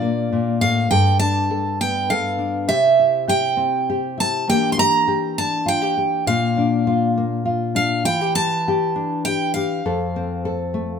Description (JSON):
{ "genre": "acoustic folk duo or small band", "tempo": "101 BPM", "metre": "3/4", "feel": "straight", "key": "F major", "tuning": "A4 = 440 Hz", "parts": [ { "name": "picked steel-string acoustic guitar", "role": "melody", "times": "0.0-11.0 s", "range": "D5 to C6", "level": "-20 LUFS", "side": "right 3 dB", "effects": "none" }, { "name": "nylon-string guitar", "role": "accompaniment", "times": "0.0-11.0 s", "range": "F2 to A4", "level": "-21 LUFS", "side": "left 3 dB", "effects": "none" } ], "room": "moderate studio reverb, RT60 0.9 s", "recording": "minimal, uncompressed stereo recording", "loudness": "-17 LUFS", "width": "side -7 dB against mid", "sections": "0.0-11.0 A section", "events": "none", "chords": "0.0 Bb; 0.9 Gadd9; 2.7 C; 4.5 Em7b5; 6.3 Bb; 8.1 Fmaj13/E (rootless); 9.8 F" }